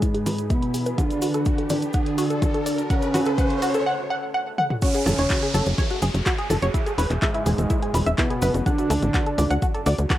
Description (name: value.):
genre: melodic techno.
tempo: 125 BPM.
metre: 4/4.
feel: straight.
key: F# minor.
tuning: A4 = 440 Hz.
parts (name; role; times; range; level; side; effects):
expressive portamento lead; melody; 0.0-9.5 s; G#3 to D4; -26 LUFS; right 1 dB; chorus, sidechain pumping, cassette tape, analog delay.
big bright polysynth; second line; 0.0-9.5 s; G#2 to D3; -32 LUFS; left 1 dB; sidechain pumping, cassette tape, analog delay.
deep dark ambient pad; sustained chords; 0.0-10.2 s; D3 to B5; -36 LUFS; equal; chorus, built-in reverb, sidechain pumping, cassette tape.
tight sequenced synth; arpeggios; 0.0-10.2 s; E4 to F#6; -27 LUFS; equal; chorus, sidechain pumping, cassette tape, analog delay.
deep house drum kit; drums; 0.0-10.2 s; congas, handclaps, hi-hat, toms; -29 LUFS; equal; none.
electronic kick drum; drums; 0.0-10.2 s; none; -24 LUFS; equal; none.
cabasa; percussion; 0.0-10.2 s; none; -40 LUFS; right 2 dB; none.
riser and downlifter; sound effects; 0.0-8.7 s; none; -32 LUFS; right 1 dB; none.
bowed-like drone; drone; 6.5-10.2 s; F#2 to C#3; -42 LUFS; equal; none.
tight sequencer bass; bass; 5.1-10.1 s; E1 to D2; -22 LUFS; equal; tube saturation, sidechain pumping.
room: light reverb.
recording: home recording on cassette.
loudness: -20 LUFS.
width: side -13 dB against mid.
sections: 0.0-4.8 A section; 4.8-10.2 B section.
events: build-up 0.0-4.8; riser 0.0-3.9; filter sweep on synth arpeggio sound 0.0-4.8; filter sweep on analog synth lead 0.0-4.8; filter sweep on analog polysynth 0.0-4.8; break 3.9-4.8; drum fill 4.6; drop 4.8-10.2.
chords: 0.0 E; 1.0 D; 2.9 Aadd9; 4.8 F#madd9; 6.7 E; 8.7 D.